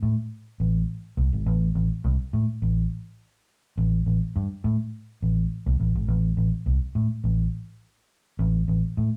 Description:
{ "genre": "funk", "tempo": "104 BPM", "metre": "4/4", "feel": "straight", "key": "unclear", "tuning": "A4 = 440 Hz", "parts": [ { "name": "vintage muted fingered electric bass", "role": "solo", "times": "0.0-9.1 s", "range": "G#1 to A2", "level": "-25 LUFS", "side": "equal", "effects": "none" } ], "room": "wet studio reverb, RT60 0.6 s", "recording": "band playing live in one room", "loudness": "-26 LUFS", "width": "mono", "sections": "0.0-9.2 A section", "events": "none", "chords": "none" }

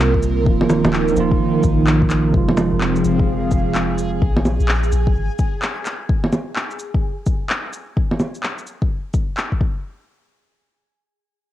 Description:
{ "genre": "future garage", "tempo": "128 BPM", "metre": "4/4", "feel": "swing 63% on 16ths", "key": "F minor", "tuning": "A4 = 437 Hz", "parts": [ { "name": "tine electric piano", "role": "accompaniment", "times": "0.0-4.2 s", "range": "C3 to F4", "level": "-19 LUFS", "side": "right 6 dB", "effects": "sidechain pumping, cassette tape, analog delay" }, { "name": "airy breathy pad", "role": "sustained chords", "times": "0.0-4.2 s", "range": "C3 to F5", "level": "-21 LUFS", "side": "left 2 dB", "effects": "chorus, sidechain pumping, cassette tape" }, { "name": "soft 808-style bass", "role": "bass", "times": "0.0-5.3 s", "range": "Eb1 to C2", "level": "-22 LUFS", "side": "left 1 dB", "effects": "sidechain pumping" }, { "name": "electronic kick drum", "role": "drums", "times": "0.1-9.7 s", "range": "none", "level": "-19 LUFS", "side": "left 1 dB", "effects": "cassette tape" }, { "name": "electronic shaker, bongos and handclaps", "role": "drums", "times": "0.2-9.5 s", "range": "none", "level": "-22 LUFS", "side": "equal", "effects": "cassette tape" }, { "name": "backwards swelling texture", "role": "texture", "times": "3.6-6.1 s", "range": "Ab4 to Ab5", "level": "-32 LUFS", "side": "right 3 dB", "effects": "built-in reverb, cassette tape" } ], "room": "light reverb", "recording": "home recording on cassette", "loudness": "-16 LUFS", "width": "side -13 dB against mid", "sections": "0.0-2.3 A section; 2.3-9.8 B section; 9.8-11.5 C section", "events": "none", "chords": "0.5 Ebsus2; 2.3 Fm; 4.2 Absus2; 6.1 N.C." }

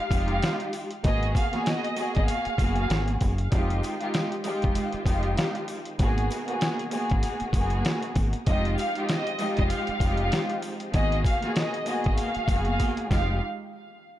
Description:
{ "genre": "hip hop, boom-bap hip-hop", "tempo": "97 BPM", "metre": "4/4", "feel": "swing 58% on 16ths", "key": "F minor", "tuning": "A4 = 440 Hz", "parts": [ { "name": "warm studio violin section", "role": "melody", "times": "0.0-2.9, 8.5-13.4 s", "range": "Eb5 to F5", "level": "-31 LUFS", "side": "equal", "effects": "high-pass filter, low-pass filter, digital delay" }, { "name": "dark studio string section", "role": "accompaniment", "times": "0.0-13.3 s", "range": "Ab3 to Ab4", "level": "-29 LUFS", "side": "equal", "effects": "cassette tape, high-pass filter, low-pass filter" }, { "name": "deep dub fingered electric bass", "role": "bass", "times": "0.0-13.4 s", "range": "F1 to Ab1", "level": "-28 LUFS", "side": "equal", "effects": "none" }, { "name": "trip hop sampler-style drum kit", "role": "drums", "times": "0.1-13.3 s", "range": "hi-hat, kick drum, snare drum", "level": "-27 LUFS", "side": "equal", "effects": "none" }, { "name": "sleigh bells", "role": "percussion", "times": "0.1-13.4 s", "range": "none", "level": "-47 LUFS", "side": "left 3 dB", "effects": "none" }, { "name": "bright tonewheel organ", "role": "sustained chords", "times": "3.5-13.4 s", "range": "Cb3 to Bb4", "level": "-41 LUFS", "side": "equal", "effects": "none" } ], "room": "small room ambience", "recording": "none", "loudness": "-24 LUFS", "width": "side -13 dB against mid", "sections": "0.0-13.4 A section", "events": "drum fill 12.8-13.4", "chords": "0.0 Fm9; 1.0 Abm9; 3.5 Fm9; 6.0 Abm9; 8.5 Fm9; 10.9 Abm9; 13.1 Fm9; 13.4 N.C." }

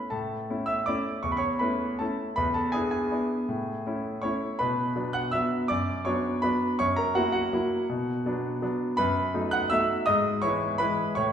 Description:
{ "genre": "classical, piano waltz", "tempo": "163 BPM", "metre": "3/4", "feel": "uneven beats, rubato", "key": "A major", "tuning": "A4 = 440 Hz", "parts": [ { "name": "bright concert grand piano", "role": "solo", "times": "0.0-11.3 s", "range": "E2 to F#6", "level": "-25 LUFS", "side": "equal", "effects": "none" } ], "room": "wet recital hall reverb, RT60 1.7 s", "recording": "recorded in a church or concert hall", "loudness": "-25 LUFS", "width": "side -8 dB against mid", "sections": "0.1-11.3 A section", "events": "none", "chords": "0.1 A; 2.4 E7; 3.5 A; 4.6 Bm; 6.8 F#7; 7.9 Bm; 9.0 B7/F#; 10.1 E/G#" }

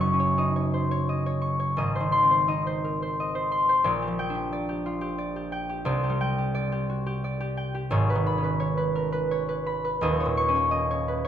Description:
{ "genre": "classical, solo harp piece", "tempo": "86 BPM", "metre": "3/4", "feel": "rubato", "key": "unclear", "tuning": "A4 = 440 Hz", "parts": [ { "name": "concert harp", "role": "solo", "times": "0.0-11.3 s", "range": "D#1 to Db6", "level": "-23 LUFS", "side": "equal", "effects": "none" } ], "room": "moderate recital hall reverb, RT60 1.5 s", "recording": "minimal, uncompressed stereo recording", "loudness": "-23 LUFS", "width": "side -10 dB against mid", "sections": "0.0-11.3 A section", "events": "none", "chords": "0.0 Gb5; 1.8 Abadd9; 3.9 Bb6; 5.9 Csus2; 7.9 G#madd9; 10.0 D#5" }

